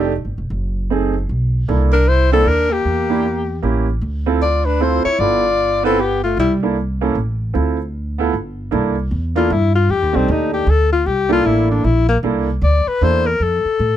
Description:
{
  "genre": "jazz, small-group swing and bop",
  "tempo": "154 BPM",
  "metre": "3/4",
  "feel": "swing 63% on 8ths",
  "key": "C mixolydian",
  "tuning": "A4 = 440 Hz",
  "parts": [
    { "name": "warm alto saxophone", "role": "melody", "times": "0.0-6.5, 9.4-14.0 s", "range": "Bb3 to D5", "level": "-17 LUFS", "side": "left 5 dB", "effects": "none" },
    { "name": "breathy tenor saxophone", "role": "second line", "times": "0.0-6.6 s", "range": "G3 to F4", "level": "-23 LUFS", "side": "right 6 dB", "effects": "none" },
    { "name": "clear baby grand piano", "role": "accompaniment", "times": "0.0-13.2 s", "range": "A3 to B4", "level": "-19 LUFS", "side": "right 6 dB", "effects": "none" },
    { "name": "upright bass", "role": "bass", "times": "0.0-14.0 s", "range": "F1 to A2", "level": "-18 LUFS", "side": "equal", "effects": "none" }
  ],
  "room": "little or no reverb",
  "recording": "close, detailed microphones",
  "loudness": "-15 LUFS",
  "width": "side -11 dB against mid",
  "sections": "0.0-8.7 A section; 8.7-14.0 A section",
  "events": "none",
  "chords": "0.0 F13; 0.5 F#dim7; 1.7 C13; 2.9 Em7b5; 3.6 A7b9; 4.0 Dm7; 5.2 G13; 6.4 C13; 7.2 N.C.; 7.5 Dm7; 8.3 N.C.; 8.7 C13; 9.9 F13 (rootless); 11.1 C13; 13.4 F",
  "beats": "0.12 | 0.51 0.90 1.29 | 1.68 2.07 2.46 | 2.85 3.24 3.63 | 4.02 4.42 4.81 | 5.20 5.59 5.98 | 6.37 6.76 7.15 | 7.54 7.93 8.33 | 8.72 9.11 9.50 | 9.89 10.28 10.67 | 11.06 11.45 11.85 | 12.24 12.63 13.02 | 13.41 13.80"
}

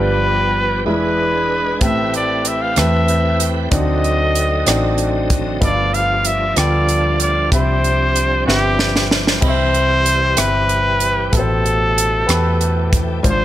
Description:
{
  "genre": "slow gospel",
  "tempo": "63 BPM (dotted quarters)",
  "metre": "6/8",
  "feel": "straight",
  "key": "C major",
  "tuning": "A4 = 440 Hz",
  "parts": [
    { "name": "bright trumpet", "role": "melody", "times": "0.0-13.4 s", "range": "G4 to F5", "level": "-18 LUFS", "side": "equal", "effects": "none" },
    { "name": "clear baby grand piano", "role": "accompaniment", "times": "0.0-13.4 s", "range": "G2 to B5", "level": "-21 LUFS", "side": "left 1 dB", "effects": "none" },
    { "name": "bright tonewheel organ", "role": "sustained chords", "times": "0.0-13.4 s", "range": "D3 to Eb5", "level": "-25 LUFS", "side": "right 3 dB", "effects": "overdrive, chorus vibrato, slow rotary speaker" },
    { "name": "hollow-body short-scale fingered electric bass", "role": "bass", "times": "0.0-13.4 s", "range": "E1 to E2", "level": "-20 LUFS", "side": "equal", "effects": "none" },
    { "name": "crisp fusion drum kit", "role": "drums", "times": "1.8-13.4 s", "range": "crash cymbal, hi-hat, kick drum, rim click, snare drum", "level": "-19 LUFS", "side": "right 1 dB", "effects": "none" }
  ],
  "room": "light reverb, small room ambience",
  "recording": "none",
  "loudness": "-14 LUFS",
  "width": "side -13 dB against mid",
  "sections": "0.0-9.4 A section; 9.4-13.4 A section",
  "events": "drum fill 8.5-9.4",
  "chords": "0.0 G7; 0.9 E7; 1.8 Am9; 3.7 D7b9; 5.6 G9; 7.5 Cmaj7; 11.3 Am9",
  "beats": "0.85 | 1.81 2.76 | 3.71 4.67 | 5.62 6.57 | 7.52 8.47 | 9.43 10.38 | 11.33 12.28 | 13.23"
}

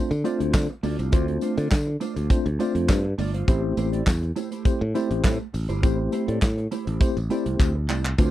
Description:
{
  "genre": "early-eighties boogie funk",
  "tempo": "102 BPM",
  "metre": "4/4",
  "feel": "straight",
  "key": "unclear",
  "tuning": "A4 = 441 Hz",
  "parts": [
    { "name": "mellow tine electric piano", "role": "accompaniment", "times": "0.0-8.3 s", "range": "A3 to C5", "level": "-26 LUFS", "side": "left 2 dB", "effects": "medium stereo tremolo" },
    { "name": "mellow electric guitar", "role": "riff", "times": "0.1-8.3 s", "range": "A3 to D5", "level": "-32 LUFS", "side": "right 6 dB", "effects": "analog chorus" },
    { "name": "modern bright fingered electric bass", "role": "bass", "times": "0.1-8.3 s", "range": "G1 to D3", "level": "-25 LUFS", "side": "equal", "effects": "none" },
    { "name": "modern studio drum kit", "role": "drums", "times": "0.1-8.3 s", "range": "handclaps, hi-hat, kick drum, snare drum", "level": "-21 LUFS", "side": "equal", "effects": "none" },
    { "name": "tambourine", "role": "percussion", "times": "0.1-8.3 s", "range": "none", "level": "-45 LUFS", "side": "left 9 dB", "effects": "none" }
  ],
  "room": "little or no reverb",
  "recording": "dry, close 1970s-style studio recording",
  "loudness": "-21 LUFS",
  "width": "side -14 dB against mid",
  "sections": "0.0-8.3 A section",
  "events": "drum fill 7.6-8.2",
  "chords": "0.0 Dm7; 3.5 Am7",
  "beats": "0.54 | 1.13 1.72 2.30 2.89 | 3.48 4.07 4.66 5.25 | 5.83 6.42 7.01 7.60 | 8.19"
}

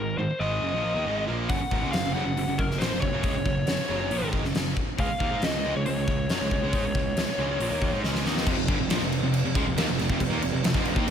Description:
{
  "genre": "hard rock",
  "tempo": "138 BPM",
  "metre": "4/4",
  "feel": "straight",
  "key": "F phrygian",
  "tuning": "A4 = 440 Hz",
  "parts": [
    { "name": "biting lead guitar", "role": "melody", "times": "0.0-8.0 s", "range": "Bb4 to Gb5", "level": "-30 LUFS", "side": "left 2 dB", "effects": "overdrive, slapback echo" },
    { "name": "distorted electric guitar", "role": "riff", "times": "0.0-11.1 s", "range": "F2 to Eb4", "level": "-30 LUFS", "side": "right 9 dB", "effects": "overdrive" },
    { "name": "tight distorted guitar", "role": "riff", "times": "0.0-11.1 s", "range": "F2 to Eb4", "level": "-34 LUFS", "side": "left 12 dB", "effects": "distortion" },
    { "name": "fuzz picked electric bass", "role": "bass", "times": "0.0-11.1 s", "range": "F1 to Ab2", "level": "-31 LUFS", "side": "left 1 dB", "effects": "overdrive" },
    { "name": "big rock drum kit", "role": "drums", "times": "1.5-11.1 s", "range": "crash cymbal, hi-hat, kick drum, snare drum", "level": "-28 LUFS", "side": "left 1 dB", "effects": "none" },
    { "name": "crunchy overdriven guitar", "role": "riff", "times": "8.5-11.1 s", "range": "F2 to Bb3", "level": "-30 LUFS", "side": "equal", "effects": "none" }
  ],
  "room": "light reverb, small room ambience",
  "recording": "none",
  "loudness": "-24 LUFS",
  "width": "side -8 dB against mid",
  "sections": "0.0-8.5 A section; 8.5-11.1 B section",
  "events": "drum fill 8.0-8.5",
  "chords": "0.0 Gb5; 5.0 Db5; 8.5 F5",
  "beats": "0.19 0.62 1.06 | 1.50 1.93 2.37 2.81 | 3.24 3.68 4.12 4.55 | 4.99 5.42 5.86 6.30 | 6.73 7.17 7.60 8.04 | 8.47 8.90 9.34 9.77 | 10.21 10.64 11.07"
}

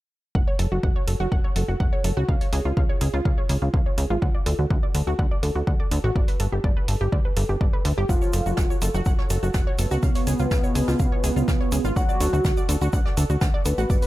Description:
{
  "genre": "melodic techno",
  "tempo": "124 BPM",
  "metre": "4/4",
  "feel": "straight",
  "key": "F# harmonic minor",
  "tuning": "A4 = 440 Hz",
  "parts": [
    { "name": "wide unison pluck", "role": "arpeggios", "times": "0.3-14.1 s", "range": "E#4 to F#5", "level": "-29 LUFS", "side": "right 1 dB", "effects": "sidechain pumping, dub echo" },
    { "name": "plucky analog bass", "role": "bass", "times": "0.3-14.0 s", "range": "F#1 to D2", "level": "-23 LUFS", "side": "equal", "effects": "sidechain pumping" },
    { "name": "electronic kick drum", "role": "drums", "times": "0.3-14.0 s", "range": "none", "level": "-23 LUFS", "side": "equal", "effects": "none" },
    { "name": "electronic hi-hat", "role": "drums", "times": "0.6-14.1 s", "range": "none", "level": "-34 LUFS", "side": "right 2 dB", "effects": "none" },
    { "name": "fat analog lead", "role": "melody", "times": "8.1-14.1 s", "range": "B3 to B4", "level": "-28 LUFS", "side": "equal", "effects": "analog chorus, sidechain pumping, dub echo" },
    { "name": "soft brush drum kit", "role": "drums", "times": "8.1-14.0 s", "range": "hi-hat, snare drum", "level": "-38 LUFS", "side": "right 2 dB", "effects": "sidechain pumping on hats, high-pass filter on hats, high-pass filter on snare, high-pass filter on room" },
    { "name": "egg shaker", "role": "percussion", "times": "8.1-14.1 s", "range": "none", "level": "-38 LUFS", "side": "left 2 dB", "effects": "none" }
  ],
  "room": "small room ambience",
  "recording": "none",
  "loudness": "-20 LUFS",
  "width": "side -16 dB against mid",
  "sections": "0.3-14.1 A section",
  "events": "none",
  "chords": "0.3 F#m; 2.3 C#; 4.2 D; 6.2 Gadd9; 8.1 F#m; 10.0 C#; 12.0 D",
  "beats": "| 0.35 0.83 1.32 1.80 | 2.29 2.77 3.25 3.74 | 4.22 4.71 5.19 5.67 | 6.16 6.64 7.12 7.61 | 8.09 8.58 9.06 9.54 | 10.03 10.51 10.99 11.48 | 11.96 12.45 12.93 13.41 | 13.90"
}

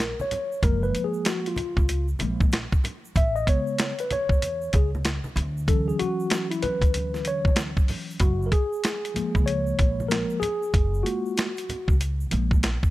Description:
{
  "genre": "hip hop, jazz-hop",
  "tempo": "95 BPM",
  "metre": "4/4",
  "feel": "swing 62% on 16ths",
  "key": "F# major",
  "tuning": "A4 = 440 Hz",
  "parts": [
    { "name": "mellow tine electric piano", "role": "accompaniment", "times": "0.0-12.6 s", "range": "C#3 to E5", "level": "-27 LUFS", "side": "left 1 dB", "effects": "medium stereo tremolo" },
    { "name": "upright bass", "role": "bass", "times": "0.0-12.8 s", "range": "F#1 to E2", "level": "-28 LUFS", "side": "equal", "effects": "none" },
    { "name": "boom bap sampler-style drum kit", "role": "drums", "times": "0.0-12.9 s", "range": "hi-hat, kick drum, snare drum", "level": "-23 LUFS", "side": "equal", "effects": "none" },
    { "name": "egg shaker and congas", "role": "percussion", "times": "0.0-12.9 s", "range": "none", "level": "-38 LUFS", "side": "right 1 dB", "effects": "none" }
  ],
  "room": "little or no reverb",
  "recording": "none",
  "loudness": "-22 LUFS",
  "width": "side -16 dB against mid",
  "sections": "0.0-8.2 A section; 8.2-12.9 B section",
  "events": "tine electric piano solo 0.0-8.2, 8.2-12.9",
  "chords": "0.0 F#maj9; 3.2 Amaj9; 5.4 Dmaj9; 8.2 F#maj9",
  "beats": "0.00 | 0.63 1.26 1.89 2.53 | 3.16 3.79 4.42 5.05 | 5.68 6.32 6.95 7.58 | 8.21 8.84 9.47 10.11 | 10.74 11.37 12.00 12.63"
}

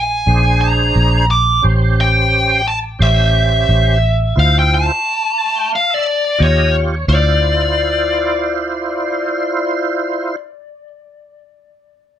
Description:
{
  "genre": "straight-eighth soul blues",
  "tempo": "88 BPM",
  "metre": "4/4",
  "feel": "swing 55% on 16ths",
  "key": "D minor",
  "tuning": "A4 = 440 Hz",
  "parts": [
    { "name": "biting lead guitar", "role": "melody", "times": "0.0-10.4 s", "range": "Db5 to D6", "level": "-16 LUFS", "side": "left 2 dB", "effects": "overdrive" },
    { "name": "vintage muted fingered electric bass", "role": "bass", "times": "0.0-10.4 s", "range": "A1 to Eb2", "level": "-14 LUFS", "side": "equal", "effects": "none" },
    { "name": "tonewheel organ", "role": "accompaniment", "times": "0.3-10.4 s", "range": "C#4 to A5", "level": "-20 LUFS", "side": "right 4 dB", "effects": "slow rotary speaker, overdrive, chorus vibrato" }
  ],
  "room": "light reverb",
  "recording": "none",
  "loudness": "-12 LUFS",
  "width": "side -10 dB against mid",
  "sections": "0.0-7.1 A section; 7.1-9.8 B section",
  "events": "tonewheel organ fill 5.0-7.1",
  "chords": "0.0 Bb7; 1.6 A7#9; 4.4 Dm7; 6.4 Eb7; 7.1 Dm7",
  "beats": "0.28 0.95 | 1.64 2.32 3.00 3.68 | 4.36 5.04 5.72 6.40 | 7.08 7.76 8.44 9.12"
}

